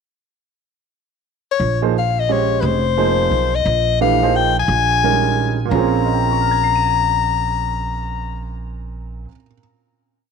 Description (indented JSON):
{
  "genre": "modal jazz",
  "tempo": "174 BPM",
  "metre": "3/4",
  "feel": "swing 65% on 8ths",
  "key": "Bb dorian",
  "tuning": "A4 = 440 Hz",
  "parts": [
    { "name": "clear soprano saxophone", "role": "melody", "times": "1.5-8.5 s", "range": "Cb5 to Bb5", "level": "-18 LUFS", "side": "left 9 dB", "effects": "none" },
    { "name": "upright bass", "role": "bass", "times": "1.6-9.2 s", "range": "F1 to Cb2", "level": "-21 LUFS", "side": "right 2 dB", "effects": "none" },
    { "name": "clear baby grand piano", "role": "accompaniment", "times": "1.8-9.6 s", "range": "Bb2 to Eb7", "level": "-21 LUFS", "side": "right 16 dB", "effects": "none" }
  ],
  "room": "light reverb, small room ambience",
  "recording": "1960s-style stereo with parts hard left and right",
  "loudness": "-15 LUFS",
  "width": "side -6 dB against mid",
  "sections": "0.6-1.6 pickup bar; 1.6-5.7 A section; 5.7-7.8 final chord",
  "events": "none",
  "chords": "0.6 N.C.; 1.6 Bbm9; 3.7 Fm7/Bb; 5.7 Bbm9"
}